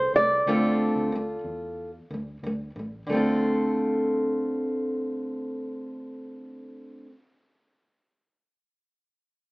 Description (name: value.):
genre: pop.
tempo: 92 BPM.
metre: 4/4.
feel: straight.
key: D minor.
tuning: A4 = 439 Hz.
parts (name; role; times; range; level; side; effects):
nylon-string guitar; melody; 0.0-2.4 s; C5 to D5; -23 LUFS; right 1 dB; none.
fingerpicked steel-string acoustic guitar; accompaniment; 0.0-7.2 s; D3 to A4; -26 LUFS; equal; none.
vintage muted fingered electric bass; bass; 0.0-7.0 s; A1 to E2; -41 LUFS; equal; none.
room: moderate large studio reverb, RT60 1.3 s.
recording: band playing live in one room, AM radio sound.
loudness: -24 LUFS.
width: side -23 dB against mid.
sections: 0.0-3.1 A section; 3.1-5.7 B section.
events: none.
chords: 0.0 Dm7.